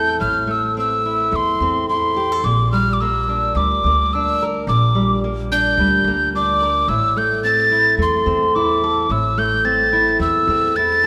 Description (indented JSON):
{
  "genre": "acoustic folk duo or small band",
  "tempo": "108 BPM",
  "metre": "4/4",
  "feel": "straight",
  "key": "unclear",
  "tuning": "A4 = 437 Hz",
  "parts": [
    { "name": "mellow hollow tin whistle", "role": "melody", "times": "0.0-11.1 s", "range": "C6 to A6", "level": "-19 LUFS", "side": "equal", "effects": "none" },
    { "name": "fingerpicked steel-string acoustic guitar", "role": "accompaniment", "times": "0.0-11.1 s", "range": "A2 to Bb4", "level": "-24 LUFS", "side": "equal", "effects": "none" },
    { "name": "upright bass", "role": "bass", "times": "0.0-11.1 s", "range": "A1 to E2", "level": "-26 LUFS", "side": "equal", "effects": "none" }
  ],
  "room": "wet concert hall reverb, RT60 2.3 s",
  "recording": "none",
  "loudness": "-17 LUFS",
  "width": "mono",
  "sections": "0.0-11.1 A section",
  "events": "none",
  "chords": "0.0 Am; 2.4 Gm/Bb; 6.9 Am"
}